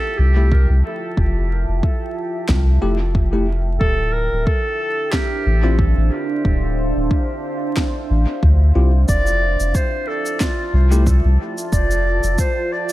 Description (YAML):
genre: ambient dub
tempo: 91 BPM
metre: 4/4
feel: swing 55% on 16ths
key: unclear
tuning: A4 = 440 Hz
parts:
  - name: warm clarinet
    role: melody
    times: 0.0-12.9 s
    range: F4 to D5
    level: -24 LUFS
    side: right 1 dB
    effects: dub echo
  - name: deep dark ambient pad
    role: sustained chords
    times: 0.0-12.9 s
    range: D4 to A5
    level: -26 LUFS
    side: right 2 dB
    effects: chorus, built-in reverb
  - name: soft dub sub bass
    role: bass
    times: 0.2-12.4 s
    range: D1 to D2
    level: -16 LUFS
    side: equal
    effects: none
  - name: bell-like tine electric piano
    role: stabs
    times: 0.4-11.0 s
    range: A3 to G4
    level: -26 LUFS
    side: left 2 dB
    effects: analog chorus, dub echo
  - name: electronic kick drum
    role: drums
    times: 0.5-12.5 s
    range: none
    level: -20 LUFS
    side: equal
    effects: none
  - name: electronic snare drum and cabasa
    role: drums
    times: 2.5-12.9 s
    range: none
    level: -28 LUFS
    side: equal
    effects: dub echo
room: light reverb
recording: vinyl crackle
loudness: -15 LUFS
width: side -16 dB against mid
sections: 0.0-12.9 A section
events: none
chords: 0.0 Fmaj9; 3.8 Dm11; 9.1 Fmaj9